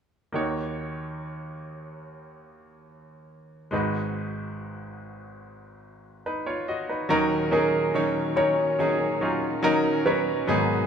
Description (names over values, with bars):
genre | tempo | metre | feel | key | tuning
pop | 71 BPM | 4/4 | straight | Eb minor | A4 = 440 Hz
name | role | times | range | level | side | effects
bright grand piano | accompaniment | 0.3-10.9 s | Ab1 to Eb5 | -26 LUFS | right 1 dB | none
muted studio string section | sustained chords | 7.1-10.9 s | Bb2 to Eb4 | -33 LUFS | left 1 dB | none
fingerpicked steel-string acoustic guitar | arpeggios | 7.1-10.9 s | Ab2 to Bb4 | -30 LUFS | left 5 dB | none
felt-muted upright piano | melody | 7.5-10.9 s | Bb4 to Db5 | -26 LUFS | right 1 dB | none
room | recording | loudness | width
wet large studio reverb, RT60 1.1 s | band playing live in one room | -23 LUFS | side -7 dB against mid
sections
0.3-7.1 A section; 7.1-10.9 B section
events
none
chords
0.3 Ebm7; 3.7 Abm7; 7.1 Ebm7